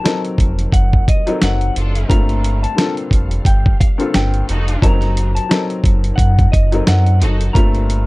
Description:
hip hop, boom-bap hip-hop; 88 BPM; 4/4; swing 55% on 16ths; G minor; A4 = 440 Hz
electric guitar through a small old amp; melody; 0.0-8.0 s; Eb5 to Bb5; -25 LUFS; left 1 dB; wide subtle chorus, high-pass filter, low-pass filter, digital delay
dark upright piano; accompaniment; 0.0-8.1 s; G2 to Bb4; -22 LUFS; left 3 dB; high-pass filter, low-pass filter
bright tonewheel organ; sustained chords; 0.0-8.1 s; Bb2 to F5; -32 LUFS; right 1 dB
dusty soul sampler-style drum kit; drums; 0.1-8.1 s; hi-hat, kick drum, snare drum; -14 LUFS; equal
sub bass with octave; bass; 0.4-8.1 s; F1 to Gb2; -16 LUFS; equal
bright studio string section; stabs; 1.8-7.5 s; D4 to A4; -29 LUFS; equal; high-pass filter, low-pass filter, digital delay
little or no reverb; dark, warm production; -12 LUFS; side -21 dB against mid
0.0-7.6 A section
0.0 D7b9b13; 2.1 Gm11; 4.8 Ebm6/Gb; 7.6 Gm11

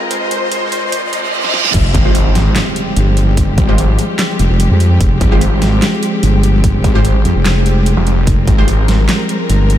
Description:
heavy wobble dubstep; 147 BPM; 4/4; swing 53% on 16ths, half-time; F minor; A4 = 441 Hz
warm studio string section; sustained chords; 0.0-9.8 s; F3 to Eb5; -18 LUFS; equal; sidechain pumping
riser, reverse cymbal and impact; sound effects; 0.0-3.4 s; -20 LUFS; right 2 dB
soft supersaw; melody; 0.1-1.3 s; C5 to C6; -23 LUFS; equal; analog chorus, diffuse ambient delay
dubstep drum kit; drums; 0.1-9.8 s; crash cymbal, handclaps, hi-hat, snare drum; -21 LUFS; equal
wobble bass; bass; 1.7-9.8 s; F1 to F2; -11 LUFS; equal; chorus, overdrive
electronic kick drum; drums; 1.7-8.6 s; -14 LUFS; equal
snarling distorted saw bass; bass; 1.9-9.1 s; F1 to Ab1; -13 LUFS; equal; distortion, overdrive
orchestra-hit-like synth stab; stabs; 2.1-8.7 s; Ab3 to C5; -24 LUFS; equal
light reverb, digital ambience; high-pass filter; -10 LUFS; side -11 dB against mid
0.0-1.7 A section; 1.7-9.8 B section
build-up 0.0-1.7; riser 0.0-1.7; filter sweep 0.0-1.7; reverse cymbal 0.9-1.7; drum fill 1.4-1.7; drop 1.7-9.8; impact 1.7-3.4
0.0 Fm; 1.7 Fmadd9

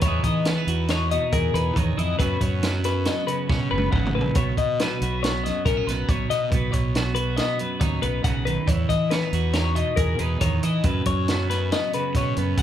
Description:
math rock and midwest emo; 139 BPM; 5/4; straight; B major; A4 = 440 Hz
twelve-string electric guitar; accompaniment; 0.0-12.6 s; F#2 to G#4; -27 LUFS; right 5 dB
twelve-string electric guitar; arpeggios; 0.0-12.6 s; A#4 to F#5; -27 LUFS; left 7 dB
fuzz fingered electric bass; bass; 0.0-12.6 s; F#1 to E3; -25 LUFS; equal; overdrive
compact cocktail drum kit; drums; 0.0-12.6 s; hi-hat, kick drum, snare drum, toms; -26 LUFS; equal
moderate large studio reverb, RT60 1.2 s; band playing live in one room; -20 LUFS; side -10 dB against mid
0.0-12.6 A section
drum fill 3.5-4.4
0.0 Emaj7; 2.2 F#sus4; 4.4 B; 8.7 Emaj7; 10.8 F#sus4

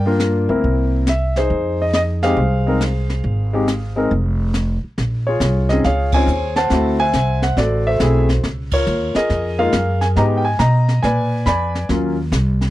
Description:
jazz piano trio; 139 BPM; 4/4; swing 66% on 8ths; F minor, Bb minor from 5.0 s; A4 = 439 Hz
warm concert grand piano; melody; 0.0-12.2 s; Gb3 to Cb6; -18 LUFS; left 1 dB
upright bass; bass; 0.0-12.7 s; F1 to Cb3; -18 LUFS; equal
jazz brush drum kit; drums; 0.2-12.7 s; brushed snare drum, hi-hat, kick drum, ride cymbal, snare drum; -24 LUFS; left 1 dB
little or no reverb; dry, close 1970s-style studio recording; -15 LUFS; side -15 dB against mid
0.0-5.0 A section; 5.0-12.7 B section
band accent 6.1, 8.7
0.0 Gm7; 0.6 C7; 1.5 Fm7; 5.0 Bbm11; 6.7 D9; 8.4 Db69; 10.2 Abmadd9; 11.0 Bb7b9; 11.9 Ebm9

